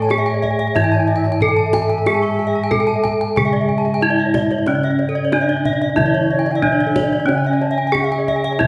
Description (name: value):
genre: Balinese gamelan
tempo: 92 BPM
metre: 4/4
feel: straight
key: C# pelog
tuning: A4 = 440 Hz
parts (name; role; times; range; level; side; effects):
- gamelan-type bronze metallophone; melody; 0.0-8.7 s; C#4 to A4-20c; -21 LUFS; equal; none
- breathy bright low xiao; second line; 0.0-8.7 s; C#5 to A5; -29 LUFS; equal; none
- gamelan-type bronze metallophone; accompaniment; 0.0-8.7 s; C#3 to A3-20c; -27 LUFS; equal; none
- gamelan-type bronze metallophone; arpeggios; 0.0-8.5 s; A4-20c to C#6; -27 LUFS; equal; none
- gamelan-type bossed gongs; bass; 0.0-8.7 s; G#2-30c to A4-20c; -26 LUFS; equal; none
- gamelan-type bronze metallophone; arpeggios; 0.1-8.7 s; A4-20c to A5-20c; -26 LUFS; equal; none
- kendang; percussion; 0.1-8.7 s; none; -29 LUFS; equal; none
room: wet recital hall reverb, RT60 1.4 s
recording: heard from further back in the room, nothing above 10.9 kHz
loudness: -17 LUFS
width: mono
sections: 0.0-8.7 A section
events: none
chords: none